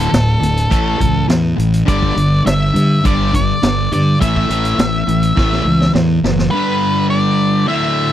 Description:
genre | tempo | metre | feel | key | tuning
classic rock | 103 BPM | 4/4 | straight | unclear | A4 = 440 Hz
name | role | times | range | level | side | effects
octave-fuzz lead guitar | melody | 0.0-8.1 s | A4 to E5 | -19 LUFS | left 1 dB | distortion
cranked stack guitar | riff | 0.0-8.1 s | D2 to A3 | -15 LUFS | equal | overdrive
fuzz fingered electric bass | bass | 0.0-6.5 s | D1 to G2 | -18 LUFS | equal | overdrive
vintage drum kit | drums | 0.1-6.5 s | hi-hat, kick drum, snare drum | -18 LUFS | equal | none
room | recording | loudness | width
little or no reverb | dry, close 1970s-style studio recording | -12 LUFS | side -11 dB against mid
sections
0.0-6.5 A section; 6.5-8.1 B section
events
drum fill 5.4-6.5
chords
0.0 D5; 0.7 A; 1.9 G5; 4.2 A5; 6.5 G

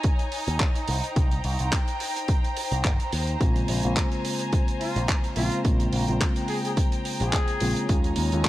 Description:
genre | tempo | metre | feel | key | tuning
nu-disco, nu disco | 107 BPM | 4/4 | swing 55% on 16ths | Bb dorian | A4 = 440 Hz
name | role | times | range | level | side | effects
dark studio string section | sustained chords | 0.0-8.5 s | Eb4 to Bb5 | -32 LUFS | equal | sidechain pumping
damped 70s drum kit | drums | 0.0-8.5 s | handclaps, hi-hat | -31 LUFS | right 1 dB | none
electronic kick drum | drums | 0.0-8.5 s | none | -24 LUFS | equal | none
picked electric bass with an envelope filter | bass | 0.5-8.4 s | Bb1 to Eb2 | -26 LUFS | equal | tube saturation
reed electric piano | accompaniment | 3.4-8.5 s | Db3 to F4 | -29 LUFS | equal | sidechain pumping
mellow trumpet section | melody | 4.8-8.0 s | F4 to Ab4 | -33 LUFS | left 2 dB | tape echo
room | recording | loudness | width
studio reverb | dry, gritty hardware recording, cassette tape | -22 LUFS | side -15 dB against mid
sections
0.0-8.5 A section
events
none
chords
0.0 Eb7sus4; 0.9 Cm7; 3.4 Bbm9; 7.9 Eb7sus4

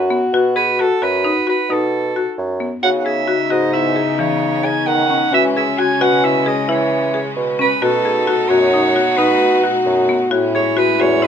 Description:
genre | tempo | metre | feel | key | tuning
contemporary instrumental, chamber music in an uneven meter | 264 BPM (eighths) | 11/8 | straight | B mixolydian | A4 = 440 Hz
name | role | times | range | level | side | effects
mellow soprano saxophone | melody | 0.0-11.3 s | A4 to G#5 | -19 LUFS | right 4 dB | none
mellow French horn | second line | 0.0-11.3 s | C#4 to F#4 | -19 LUFS | left 2 dB | none
mellow bassoon | bass | 0.0-11.3 s | E2 to E3 | -20 LUFS | right 3 dB | none
buzzing marimba with hard mallets | arpeggios | 0.1-11.3 s | E3 to G#4 | -20 LUFS | left 5 dB | none
clear studio string section | sustained chords | 2.8-11.3 s | A2 to D#4 | -25 LUFS | left 1 dB | none
room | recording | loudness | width
light reverb | close, detailed microphones | -14 LUFS | side -8 dB against mid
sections
0.0-11.3 A section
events
none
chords
0.0 B7; 2.8 C#m7; 5.3 E6; 7.8 B7; 10.3 Amaj7

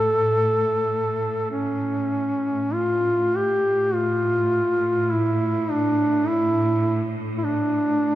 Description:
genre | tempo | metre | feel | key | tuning
caucasian folk, Caucasian lament | 47-52 BPM | 3/4 | rubato | unclear | A4 = 443 Hz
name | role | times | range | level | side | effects
mellow duduk | melody | 0.0-8.2 s | C#4 to A4 | -20 LUFS | equal | none
clear symphonic cello section | drone | 0.0-8.2 s | A2 | -28 LUFS | equal | none
room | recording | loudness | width
wet church reverb, RT60 3.5 s | none | -20 LUFS | side -13 dB against mid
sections
0.0-2.7 A section; 2.7-8.2 B section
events
none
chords
none

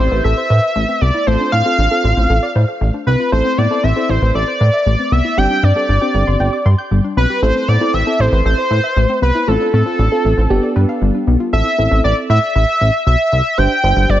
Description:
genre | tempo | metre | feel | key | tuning
pop | 117 BPM | 4/4 | straight | A minor | A4 = 436 Hz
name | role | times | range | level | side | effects
wide unison lead | melody | 0.0-14.2 s | A4 to G5 | -16 LUFS | equal | none
mellow FM electric piano | accompaniment | 0.0-14.2 s | B3 to C5 | -21 LUFS | right 2 dB | chorus, tremolo
soft round pluck | arpeggios | 0.0-11.5 s | G3 to G6 | -22 LUFS | left 3 dB | chorus, digital delay
chorused synth bass | bass | 0.0-14.2 s | G1 to A2 | -14 LUFS | equal | none
room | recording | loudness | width
light reverb | nothing above 7.7 kHz | -12 LUFS | side -12 dB against mid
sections
0.0-11.5 A section; 11.5-14.2 B section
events
none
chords
0.0 Amadd9; 1.3 F6/A; 3.3 Amadd9; 5.4 Gsus4; 7.4 Amadd9; 9.5 F6/A; 10.5 G7; 11.5 Am; 13.6 Gsus4

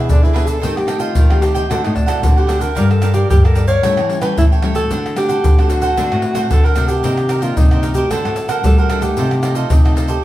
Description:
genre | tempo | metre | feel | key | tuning
samba and choro | 112 BPM | 4/4 | straight | unclear | A4 = 440 Hz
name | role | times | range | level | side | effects
breathy alto saxophone | melody | 0.0-10.2 s | D4 to C#5 | -19 LUFS | equal | none
cavaquinho | accompaniment | 0.0-10.2 s | D4 to G5 | -24 LUFS | right 5 dB | none
nylon-string guitar | accompaniment | 0.0-10.2 s | G2 to Bb4 | -24 LUFS | left 2 dB | none
nylon-string guitar | bass | 0.0-10.2 s | G2 to G3 | -20 LUFS | equal | none
tube shaker, surdo, pandeiro and tamborim | percussion | 0.1-10.2 s | none | -15 LUFS | equal | none
room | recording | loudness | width
wet large studio reverb, RT60 1.0 s | band playing live in one room | -12 LUFS | side -14 dB against mid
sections
0.0-10.2 A section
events
none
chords
0.0 E7; 0.6 Am7b5/Eb; 1.7 D7; 2.8 Gm7; 3.8 A7; 4.9 D7; 7.0 Cm9; 8.1 D7; 9.2 F7/C

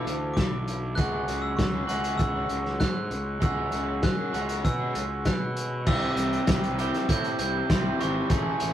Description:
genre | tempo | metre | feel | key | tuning
indie rock | 98 BPM | 4/4 | straight | unclear | A4 = 441 Hz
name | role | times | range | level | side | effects
glockenspiel with hard plastic mallets | melody | 0.0-8.6 s | C6 to G6 | -33 LUFS | right 3 dB | none
tonewheel organ | sustained chords | 0.0-8.7 s | C4 to E6 | -41 LUFS | equal | none
electric guitar through a small old amp | riff | 0.0-8.7 s | E3 to G#4 | -31 LUFS | right 2 dB | none
raw garage guitar | riff | 0.0-8.7 s | A2 to A4 | -36 LUFS | left 4 dB | overdrive, spring reverb
fuzz fingered electric bass | bass | 0.0-8.7 s | G#1 to B2 | -32 LUFS | left 1 dB | overdrive
vintage drum kit | drums | 0.1-8.7 s | crash cymbal, hi-hat, kick drum, snare drum | -27 LUFS | equal | none
room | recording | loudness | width
moderate studio reverb, RT60 0.5 s | rough rehearsal-room recording | -24 LUFS | side -11 dB against mid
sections
0.0-5.9 A section; 5.9-8.7 B section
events
none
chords
0.0 Dmadd9; 1.0 C#sus4; 5.9 C

